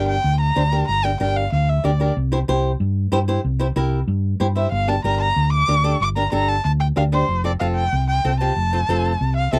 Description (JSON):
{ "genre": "latin, cumbia", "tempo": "187 BPM", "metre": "4/4", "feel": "straight", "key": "G dorian", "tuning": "A4 = 438 Hz", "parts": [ { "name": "warm erhu", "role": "melody", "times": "0.0-2.1, 4.6-9.6 s", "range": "C5 to D6", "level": "-24 LUFS", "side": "equal", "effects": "none" }, { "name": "flamenco guitar", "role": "accompaniment", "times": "0.0-9.6 s", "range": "C4 to C5", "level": "-25 LUFS", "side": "equal", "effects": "none" }, { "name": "hollow-body short-scale fingered electric bass", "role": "bass", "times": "0.0-9.6 s", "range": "F1 to G2", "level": "-22 LUFS", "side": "equal", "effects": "none" } ], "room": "little or no reverb", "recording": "dry, close 1970s-style studio recording", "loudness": "-20 LUFS", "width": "mono", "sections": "0.0-9.6 A section", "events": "none", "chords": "0.0 Gm; 2.2 C; 4.7 Gm; 7.3 F" }